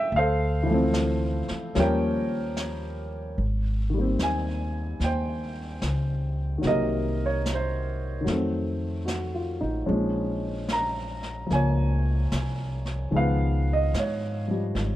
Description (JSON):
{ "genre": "jazz ballad", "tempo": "74 BPM", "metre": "4/4", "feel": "swing 69% on 8ths", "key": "Ab major from 3.4 s", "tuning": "A4 = 439 Hz", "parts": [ { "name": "warm baby grand piano", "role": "accompaniment", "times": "0.0-15.0 s", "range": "C3 to Bb5", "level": "-27 LUFS", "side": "equal", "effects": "none" }, { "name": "upright bass", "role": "bass", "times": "0.1-15.0 s", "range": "Ab1 to Ab2", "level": "-27 LUFS", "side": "equal", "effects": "none" }, { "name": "jazz brush drum kit", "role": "drums", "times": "0.1-15.0 s", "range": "brushed snare drum, hi-hat, snare drum", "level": "-36 LUFS", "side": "left 1 dB", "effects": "none" } ], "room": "little or no reverb", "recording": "worn, warbling old tape, cassette tape, warbly pitch drift", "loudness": "-24 LUFS", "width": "side -14 dB against mid", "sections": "0.0-3.4 A section; 3.4-15.0 B section", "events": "none", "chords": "0.1 Dm9; 1.7 Eb7; 3.4 Abmaj7; 6.6 Cm7b5; 8.3 F7b9; 9.9 Bbm9; 13.1 Db9", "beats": "| 0.11 0.92 1.74 2.56 | 3.37 4.19 5.00 5.82 | 6.63 7.44 8.26 9.07 | 9.88 10.69 11.50 12.31 | 13.12 13.94 14.75" }